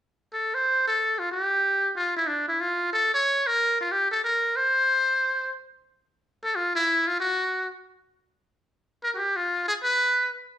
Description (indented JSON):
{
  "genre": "jazz",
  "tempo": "183 BPM",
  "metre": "4/4",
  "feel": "swing 62% on 8ths",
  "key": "F major",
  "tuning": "A4 = 440 Hz",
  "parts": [
    { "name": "trumpet with metal mute", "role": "solo", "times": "0.3-10.3 s", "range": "D4 to Db5", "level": "-22 LUFS", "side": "equal", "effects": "none" }
  ],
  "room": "moderate large studio reverb, RT60 0.9 s",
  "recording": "band playing live in one room",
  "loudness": "-22 LUFS",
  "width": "side -11 dB against mid",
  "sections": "0.6-5.9 A section; 5.9-10.6 B section",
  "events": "none",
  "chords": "none"
}